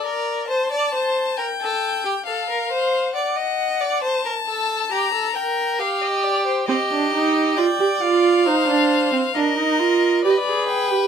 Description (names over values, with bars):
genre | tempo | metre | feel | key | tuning
classical, baroque-style fugue for string quartet | 68 BPM | 4/4 | straight | C minor | A4 = 440 Hz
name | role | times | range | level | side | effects
clear violin | melody | 0.0-11.1 s | C5 to Bb5 | -23 LUFS | left 6 dB | none
clear violin | second line | 0.0-11.1 s | G4 to Eb5 | -22 LUFS | equal | none
rich viola | accompaniment | 6.7-11.1 s | C4 to Ab4 | -18 LUFS | right 5 dB | none
room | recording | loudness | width
light reverb | close, detailed microphones | -18 LUFS | side -7 dB against mid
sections
0.0-11.1 A section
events
none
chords
0.0 Gm; 3.1 D; 4.9 Gm; 6.7 Cm; 10.2 G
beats
0.49 1.38 2.27 | 3.15 4.03 4.91 5.80 | 6.68 7.57 8.46 9.35 | 10.24